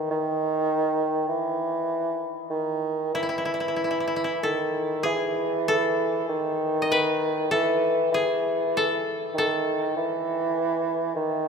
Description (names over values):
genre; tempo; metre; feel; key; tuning
japanese traditional, Japanese chamber music; 49 BPM; 4/4; rubato; E ryukyu; A4 = 440 Hz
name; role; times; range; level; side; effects
koto; melody; 0.0-11.3 s; G#3 to D#5; -27 LUFS; left 2 dB; none
mellow bassoon; second line; 0.0-11.5 s; D#3 to E3; -24 LUFS; right 1 dB; none
room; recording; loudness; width
wet cathedral reverb, RT60 5.8 s; minimal, uncompressed stereo recording; -23 LUFS; side -5 dB against mid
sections
0.0-5.1 A section; 5.1-11.5 B section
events
none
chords
none